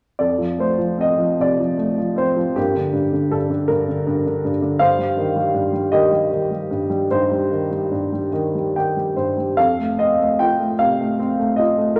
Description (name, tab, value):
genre	classical, lyrical solo piano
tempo	48-55 BPM (dotted quarters)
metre	6/8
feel	rubato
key	unclear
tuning	A4 = 440 Hz
part	dark grand piano	solo	0.2-12.0 s	F2 to G5	-19 LUFS	equal	none
room	wet recital hall reverb, RT60 1.5 s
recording	none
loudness	-19 LUFS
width	mono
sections	0.2-12.0 A section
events	grand piano fill 8.3-9.6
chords	0.2 F; 2.6 Gm; 4.8 Cm/G; 9.6 F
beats	| 0.19 1.40 | 2.57 3.70 | 4.80 5.93 | 7.10 8.33 | 9.57 10.78 | 11.95